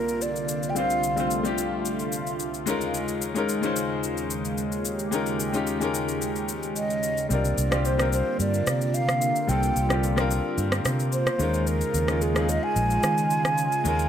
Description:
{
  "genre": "amapiano",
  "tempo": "110 BPM",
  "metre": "4/4",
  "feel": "straight",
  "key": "unclear",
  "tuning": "A4 = 440 Hz",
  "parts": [
    { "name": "mellow hollow concert flute", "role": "melody", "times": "0.0-1.3, 6.8-14.1 s", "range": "Ab4 to Ab5", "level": "-27 LUFS", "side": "right 1 dB", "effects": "digital delay" },
    { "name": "clear concert grand piano", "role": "accompaniment", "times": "0.0-14.1 s", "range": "G3 to C5", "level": "-29 LUFS", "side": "left 4 dB", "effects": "none" },
    { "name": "warm analog pad", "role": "sustained chords", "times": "0.0-14.1 s", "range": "C2 to G4", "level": "-30 LUFS", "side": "right 1 dB", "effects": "chorus" },
    { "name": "electronic shaker and rim click", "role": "drums", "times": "0.1-14.1 s", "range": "none", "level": "-30 LUFS", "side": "left 1 dB", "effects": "none" },
    { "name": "fingered electric bass", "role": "bass", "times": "7.3-14.1 s", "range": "Bb1 to Eb3", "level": "-26 LUFS", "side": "equal", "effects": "none" }
  ],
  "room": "light reverb, studio reverb",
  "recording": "none",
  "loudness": "-23 LUFS",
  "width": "side -9 dB against mid",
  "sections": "0.0-14.1 A section",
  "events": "kick muted 6.2-7.3",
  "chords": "0.0 C9sus4; 2.7 Eb9sus4; 7.3 C9sus4; 11.4 Eb9sus4"
}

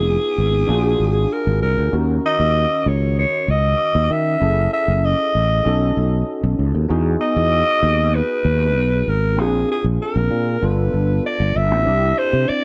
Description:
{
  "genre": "polished 1980s jazz-funk pop",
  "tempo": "97 BPM",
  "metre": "4/4",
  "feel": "straight",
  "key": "unclear",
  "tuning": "A4 = 440 Hz",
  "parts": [
    { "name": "growling alto saxophone", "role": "melody", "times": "0.0-12.6 s", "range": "Ab4 to Fb5", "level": "-22 LUFS", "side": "equal", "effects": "none" },
    { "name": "overdriven tine electric piano", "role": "accompaniment", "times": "0.0-12.6 s", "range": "Eb3 to Bb4", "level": "-27 LUFS", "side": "equal", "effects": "analog chorus" },
    { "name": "sustaining fretless electric bass", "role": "bass", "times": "0.0-12.5 s", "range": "F1 to Eb3", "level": "-21 LUFS", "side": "equal", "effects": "none" }
  ],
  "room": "small room ambience",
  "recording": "dry, close 1970s-style studio recording",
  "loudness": "-18 LUFS",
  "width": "mono",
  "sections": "0.0-11.9 A section",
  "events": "none",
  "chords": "0.0 Fm7b5; 0.7 Bb7b13; 1.9 Ebm7; 4.4 Gbm7; 5.7 B7; 6.9 Emaj7; 9.4 Bb7; 10.6 G7; 11.9 Cadd9"
}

